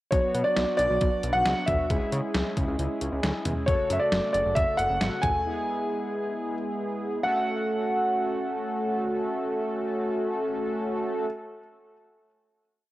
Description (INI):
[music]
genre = synth-pop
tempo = 135 BPM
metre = 4/4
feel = straight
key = F# minor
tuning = A4 = 437 Hz
[part]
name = warm concert grand piano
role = melody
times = 0.1-11.3 s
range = C#5 to G#5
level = -27 LUFS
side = equal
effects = cassette tape, tape echo
[part]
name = analog synth brass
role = accompaniment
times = 0.1-11.3 s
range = C#3 to A4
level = -29 LUFS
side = equal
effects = chorus, cassette tape
[part]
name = fat analog bass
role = bass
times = 0.1-5.3 s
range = F#1 to C#3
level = -30 LUFS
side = equal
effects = none
[part]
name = detuned 8-bit digital drum machine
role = drums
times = 0.1-5.3 s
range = hi-hat, kick drum, snare drum, toms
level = -28 LUFS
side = equal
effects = overdrive, cassette tape
[sound]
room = wet spring reverb, RT60 2.1 s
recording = home recording on cassette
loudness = -24 LUFS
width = side -16 dB against mid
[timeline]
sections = 0.1-7.2 pre-chorus; 7.2-10.8 final chord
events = none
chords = 0.1 Bm; 1.9 C#m; 3.7 F#m; 5.5 E; 7.2 F#m